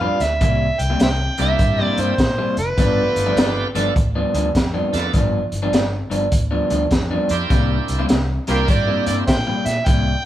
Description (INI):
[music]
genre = electric blues shuffle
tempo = 102 BPM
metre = 4/4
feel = swing 65% on 8ths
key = unclear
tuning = A4 = 440 Hz
[part]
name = overdriven harmonica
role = melody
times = 0.0-3.7, 8.5-10.2 s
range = F4 to G5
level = -21 LUFS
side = right 1 dB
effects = none
[part]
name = electric guitar through a small old amp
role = riff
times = 0.0-10.1 s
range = G2 to B4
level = -22 LUFS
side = left 1 dB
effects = spring reverb
[part]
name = vintage muted fingered electric bass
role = bass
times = 0.0-10.1 s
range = F1 to Bb2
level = -23 LUFS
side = equal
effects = none
[part]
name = crunchy breakbeat drum kit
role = drums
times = 0.2-10.0 s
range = hi-hat, kick drum, snare drum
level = -20 LUFS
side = equal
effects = none
[part]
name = bright tonewheel organ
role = accompaniment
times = 1.4-9.2 s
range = A3 to A4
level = -25 LUFS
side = right 3 dB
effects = slow rotary speaker, overdrive
[sound]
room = moderate large studio reverb, RT60 1.0 s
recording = band playing live in one room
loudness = -16 LUFS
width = side -13 dB against mid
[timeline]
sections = 0.0-10.3 A section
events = none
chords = 0.4 C7; 2.8 G7; 7.5 C7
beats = | 0.41 1.00 1.59 2.19 | 2.78 3.37 3.96 4.55 | 5.14 5.73 6.33 6.92 | 7.51 8.10 8.69 9.28 | 9.87